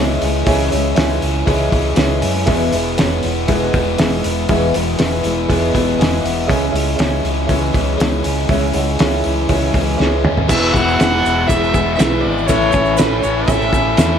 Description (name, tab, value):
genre	folk rock and heartland rock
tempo	120 BPM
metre	4/4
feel	straight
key	E major from 10.5 s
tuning	A4 = 442 Hz
part	mellow reed electric piano	accompaniment	0.0-14.2 s	E4 to B5	-24 LUFS	right 6 dB	none
part	picked steel-string acoustic guitar	accompaniment	0.0-14.2 s	E2 to E4	-21 LUFS	left 5 dB	none
part	overdriven electric guitar	riff	0.0-14.2 s	E2 to E4	-20 LUFS	equal	none
part	fingered electric bass	bass	0.0-14.2 s	E1 to F#2	-21 LUFS	equal	none
part	cloth-damped thuddy drum kit	drums	0.2-14.1 s	crash cymbal, hi-hat, kick drum, snare drum, toms	-18 LUFS	equal	none
part	rich fiddle	melody	10.5-14.2 s	B4 to F#5	-19 LUFS	left 1 dB	none
part	rich studio string section	sustained chords	10.5-14.2 s	G#3 to A4	-29 LUFS	right 1 dB	none
part	tube shaker	percussion	10.5-14.1 s	none	-32 LUFS	right 9 dB	none
room	light reverb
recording	none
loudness	-13 LUFS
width	side -8 dB against mid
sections	0.0-10.5 A section; 10.5-14.2 B section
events	reed electric piano fill 5.5-6.5; drum fill 10.0-10.5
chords	0.0 C#m; 2.5 E; 6.5 C#m; 10.5 E; 12.5 A